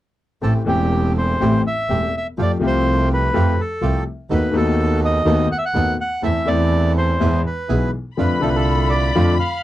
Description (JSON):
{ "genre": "tango", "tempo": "124 BPM", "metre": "4/4", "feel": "rubato", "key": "A minor", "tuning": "A4 = 441 Hz", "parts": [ { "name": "bandoneon", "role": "melody", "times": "0.4-9.6 s", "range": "G4 to F#5", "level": "-22 LUFS", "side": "right 1 dB", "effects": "none" }, { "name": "clear concert grand piano", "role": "accompaniment", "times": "0.4-9.4 s", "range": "E1 to A4", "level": "-21 LUFS", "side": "left 4 dB", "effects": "none" }, { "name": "bandoneon", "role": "stabs", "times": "0.4-9.4 s", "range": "A3 to A4", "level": "-27 LUFS", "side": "right 5 dB", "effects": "none" }, { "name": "clear double bass", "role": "bass", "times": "0.4-9.4 s", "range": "E1 to F2", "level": "-20 LUFS", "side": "right 1 dB", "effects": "none" }, { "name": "rich studio violin section", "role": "second line", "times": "8.2-9.6 s", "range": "B5", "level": "-25 LUFS", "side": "left 5 dB", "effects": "none" } ], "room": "little or no reverb", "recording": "dry, close 1970s-style studio recording", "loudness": "-16 LUFS", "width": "side -14 dB against mid", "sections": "0.4-9.6 A section", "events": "none", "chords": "0.4 Am7; 2.4 Fadd9; 4.3 B7/D#; 6.2 Am/E; 7.2 E; 8.2 F6" }